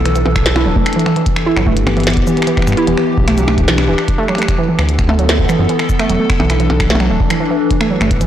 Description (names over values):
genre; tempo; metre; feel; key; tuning
IDM; 149 BPM; 4/4; straight; unclear; A4 = 440 Hz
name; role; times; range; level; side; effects
warbly tape-like pad; sustained chords; 0.0-8.3 s; D3 to A4; -18 LUFS; left 1 dB; chorus, built-in reverb, phaser
round analog bass; bass; 0.0-8.3 s; D1 to G2; -16 LUFS; equal; tube saturation
warbly dusty pluck; arpeggios; 0.1-8.3 s; E3 to E4; -17 LUFS; right 3 dB; chorus, tape echo
glitchy drum kit; drums; 0.1-8.3 s; cabasa, finger snaps, hi-hat, percussion blips, snare drum; -20 LUFS; equal; soft clipping on snare, tape echo
electronic kick drum; drums; 0.4-8.2 s; none; -18 LUFS; equal; none
room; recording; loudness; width
moderate echo chamber reverb, RT60 2.2 s; blown-out, overdriven recording, overdrive; -11 LUFS; side -11 dB against mid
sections
0.0-8.3 A section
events
none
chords
0.0 Dsus2; 1.3 G6; 2.9 Em7; 4.5 D69; 7.7 G6